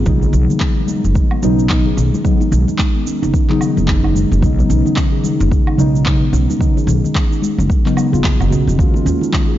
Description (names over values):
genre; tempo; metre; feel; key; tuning
organic downtempo; 110 BPM; 4/4; swing 60% on 16ths; G# dorian; A4 = 440 Hz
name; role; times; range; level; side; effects
muted felt-like synth keys; accompaniment; 0.0-9.6 s; C#3 to E#4; -18 LUFS; equal; chorus, phaser, sidechain pumping, analog delay
steel tongue drum; arpeggios; 0.0-9.6 s; D#3 to G#4; -19 LUFS; left 1 dB; analog delay
upright bass; bass; 0.0-9.2 s; F#1 to D#2; -16 LUFS; equal; none
electronic cabasa, handclaps and woodblock; drums; 0.1-9.5 s; none; -25 LUFS; right 1 dB; overdrive
electronic kick drum; drums; 0.1-9.5 s; none; -16 LUFS; equal; overdrive
bongos and congas; percussion; 0.2-9.5 s; none; -28 LUFS; equal; none
room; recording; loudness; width
light reverb, small room reverb; dry, gritty hardware recording, transformer saturation, nothing above 7.5 kHz; -12 LUFS; side -13 dB against mid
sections
0.0-8.8 A section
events
none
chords
0.1 G#m; 8.8 D#5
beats
| 0.06 0.61 1.15 1.70 | 2.24 2.79 3.33 3.88 | 4.42 4.97 5.51 6.06 | 6.61 7.15 7.70 8.24 | 8.79 9.33